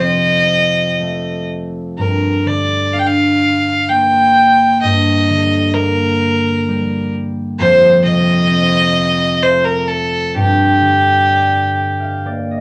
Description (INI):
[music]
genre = celtic folk, Celtic slow air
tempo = 64 BPM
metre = 3/4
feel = uneven beats, rubato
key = G minor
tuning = A4 = 440 Hz
[part]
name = rich fiddle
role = melody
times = 0.0-12.3 s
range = G4 to G5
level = -16 LUFS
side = equal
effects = none
[part]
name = concert harp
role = accompaniment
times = 0.0-12.6 s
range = F2 to G5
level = -19 LUFS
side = equal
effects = none
[sound]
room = moderate studio ambience, RT60 0.5 s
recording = none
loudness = -14 LUFS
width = mono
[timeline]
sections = 0.0-12.6 A section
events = harp fill 11.3-12.6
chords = 0.0 F7; 2.0 Gm; 7.6 F7; 10.4 Gm